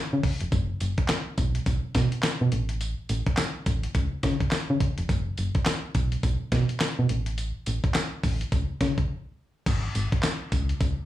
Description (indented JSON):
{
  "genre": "R&B, new jack swing",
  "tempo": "105 BPM",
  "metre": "4/4",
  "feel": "swing 60% on 16ths",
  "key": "unclear",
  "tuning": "A4 = 440 Hz",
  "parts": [
    { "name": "solid FM bass", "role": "bass", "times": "0.1-10.9 s", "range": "E#1 to C#3", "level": "-26 LUFS", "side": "equal", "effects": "none" },
    { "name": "dusty soul sampler-style drum kit", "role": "drums", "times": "0.2-11.0 s", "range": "crash cymbal, handclaps, hi-hat, kick drum, snare drum, tambourine", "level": "-26 LUFS", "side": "equal", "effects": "none" }
  ],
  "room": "little or no reverb",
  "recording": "studio reverb",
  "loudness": "-24 LUFS",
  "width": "side -14 dB against mid",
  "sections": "0.0-9.7 A section; 9.7-11.1 A section",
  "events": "break 9.1-9.7",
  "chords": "none"
}